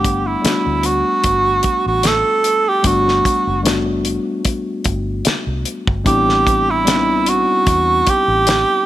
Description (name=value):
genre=lush 1970s-style soul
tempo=75 BPM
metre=4/4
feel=swing 54% on 16ths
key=unclear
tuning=A4 = 437 Hz
part: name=breathy tenor saxophone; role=melody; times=0.0-8.9 s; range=E4 to A4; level=-15 LUFS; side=right 2 dB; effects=none
part: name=tine electric piano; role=accompaniment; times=0.0-8.9 s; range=G3 to F#5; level=-21 LUFS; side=left 3 dB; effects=none
part: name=vintage muted fingered electric bass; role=bass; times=0.0-8.6 s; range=F#1 to E2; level=-23 LUFS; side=equal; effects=none
part: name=damped 70s drum kit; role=drums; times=0.0-8.7 s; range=hi-hat, kick drum, snare drum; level=-19 LUFS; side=left 1 dB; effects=none
room=light reverb, studio ambience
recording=none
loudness=-14 LUFS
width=side -14 dB against mid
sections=0.0-8.9 A section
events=none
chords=0.0 Gmaj9; 6.1 Am11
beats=0.45 1.25 2.05 | 2.85 3.66 4.46 5.26 | 6.06 6.87 7.67 8.47